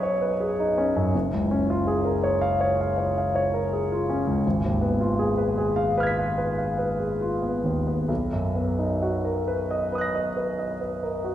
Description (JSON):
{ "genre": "classical, impressionist solo piano", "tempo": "43-55 BPM (dotted quarters)", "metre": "9/8", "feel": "rubato", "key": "unclear", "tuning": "A4 = 439 Hz", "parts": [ { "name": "warm grand piano", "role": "solo", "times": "0.0-11.3 s", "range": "Gb1 to B6", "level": "-22 LUFS", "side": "equal", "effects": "none" } ], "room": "wet recital hall reverb, RT60 1.4 s", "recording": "heard from further back in the room", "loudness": "-22 LUFS", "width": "side -11 dB against mid", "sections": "0.0-11.3 A section", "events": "none", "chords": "0.0 B69; 1.1 Gbmaj9; 4.4 Abm6; 8.1 Bmaj7" }